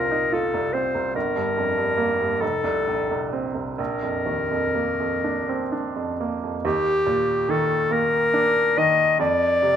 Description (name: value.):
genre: classical, romantic duo for clarinet and grand piano.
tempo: 41-48 BPM (dotted quarters).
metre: 6/8.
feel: rubato.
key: unclear.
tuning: A4 = 439 Hz.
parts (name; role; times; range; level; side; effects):
bright clarinet; melody; 0.0-9.8 s; G4 to Eb5; -21 LUFS; left 2 dB; none.
bright baby grand piano; accompaniment; 0.0-9.8 s; F1 to F4; -25 LUFS; right 4 dB; none.
room: light reverb.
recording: minimal, uncompressed stereo recording.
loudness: -20 LUFS.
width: side -9 dB against mid.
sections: 0.0-6.6 A section; 6.6-9.8 B section.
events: none.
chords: 0.0 F5; 1.2 Gm7; 2.4 F; 3.8 Bb; 6.6 Ebmaj7; 9.2 F5.